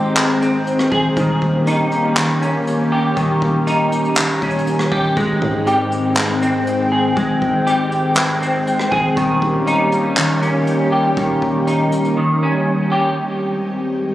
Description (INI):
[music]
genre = hip hop, atmospheric cloud-rap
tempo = 120 BPM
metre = 4/4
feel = half-time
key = Ab major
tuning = A4 = 440 Hz
[part]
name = warbly tape-like pad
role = sustained chords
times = 0.0-14.1 s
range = Eb3 to G5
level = -19 LUFS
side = left 1 dB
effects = chorus, built-in reverb
[part]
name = semi-hollow electric guitar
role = arpeggios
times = 0.0-13.2 s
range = Eb3 to Ab4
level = -18 LUFS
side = equal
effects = ensemble chorus, digital delay
[part]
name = long sustained 808-style bass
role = bass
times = 0.0-12.1 s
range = Eb1 to Ab2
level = -26 LUFS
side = equal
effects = none
[part]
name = jazz brush drum kit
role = drums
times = 0.2-12.2 s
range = handclaps, hi-hat, kick drum, rim click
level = -23 LUFS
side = equal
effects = none
[sound]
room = light reverb, studio reverb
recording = recorded on a phone in the room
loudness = -15 LUFS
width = side -14 dB against mid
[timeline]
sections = 0.0-13.2 A section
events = silent gap 12.2-13.2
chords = 0.0 Abmaj7; 1.2 Eb7; 5.2 Abmaj7; 9.2 Eb7; 13.2 Abmaj7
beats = 0.17 0.67 | 1.17 1.67 2.17 2.67 | 3.17 3.67 4.17 4.67 | 5.17 5.67 6.17 6.67 | 7.17 7.67 8.17 8.67 | 9.17 9.67 10.17 10.67 | 11.17 11.67 12.17 12.67 | 13.17 13.67